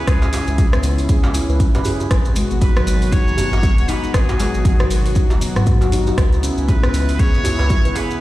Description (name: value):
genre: afro house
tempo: 118 BPM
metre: 4/4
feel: swing 59% on 16ths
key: C# minor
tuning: A4 = 440 Hz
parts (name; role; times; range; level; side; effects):
- trumpet with straight mute; melody; 0.0-8.2 s; G#4 to C#5; -27 LUFS; right 1 dB; digital delay
- warm analog pad; sustained chords; 0.0-8.2 s; B2 to F#4; -26 LUFS; left 1 dB; chorus, sidechain pumping
- handpan; arpeggios; 0.0-8.2 s; D#3 to B4; -24 LUFS; left 1 dB; sidechain pumping, digital delay
- round analog bass; bass; 0.1-7.9 s; D#1 to G#2; -19 LUFS; equal; tube saturation, sidechain pumping
- afro-pop drum kit; drums; 0.1-8.2 s; hi-hat, rim click; -27 LUFS; equal; small room ambience
- electronic kick drum; drums; 0.1-7.8 s; none; -16 LUFS; equal; small room ambience
- maracas; percussion; 0.1-8.2 s; none; -34 LUFS; left 1 dB; none
- djembe; percussion; 0.2-8.1 s; none; -26 LUFS; right 1 dB; none
room: light reverb, studio ambience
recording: played on a big sound system in a bare room, stone room reverb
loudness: -14 LUFS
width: side -16 dB against mid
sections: 0.0-8.2 A section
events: none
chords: 0.0 C#m; 2.1 G#m7; 6.2 C#m7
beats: | 0.07 0.58 1.09 1.60 | 2.11 2.62 3.12 3.63 | 4.14 4.65 5.16 5.67 | 6.18 6.68 7.19 7.70